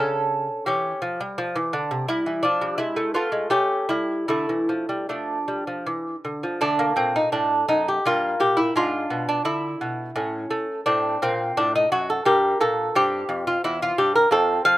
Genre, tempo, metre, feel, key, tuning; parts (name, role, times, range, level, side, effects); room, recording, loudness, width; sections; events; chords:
classical, baroque-style dance for lute; 75-89 BPM; 3/4; rubato; D minor; A4 = 440 Hz
lute; solo; 0.0-14.8 s; E2 to F5; -20 LUFS; equal
light reverb; recorded outdoors, with no room sound; -20 LUFS; side -16 dB against mid
0.0-6.6 A section; 6.6-14.8 A section
0.0 A7/C#; 1.4 Dm; 2.1 Em7; 2.8 Eadd11/G#; 3.5 A7; 4.3 Dm; 6.6 D; 8.1 Gm; 8.8 G#dim; 10.2 A; 10.9 D7b13; 12.3 Gm; 13.0 C